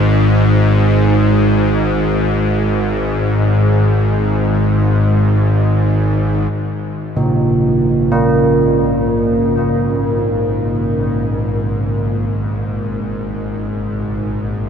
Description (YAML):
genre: dark ambient drone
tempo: free time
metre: none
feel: none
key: unclear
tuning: A4 = 440 Hz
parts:
  - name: bowed-like drone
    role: drone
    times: 0.0-14.7 s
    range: G#1 to G#2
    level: -14 LUFS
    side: equal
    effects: built-in reverb
  - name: carillon bells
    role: arpeggios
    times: 7.2-13.9 s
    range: A#2 to A#3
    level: -15 LUFS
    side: right 1 dB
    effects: diffuse ambient delay
room: wet huge ambient reverb, RT60 7.7 s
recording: none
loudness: -13 LUFS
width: side -7 dB against mid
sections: 0.0-6.5 A section; 6.5-14.7 B section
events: fade-in on synth drone 6.5-14.7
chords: 0.0 N.C.; 6.5 G#sus2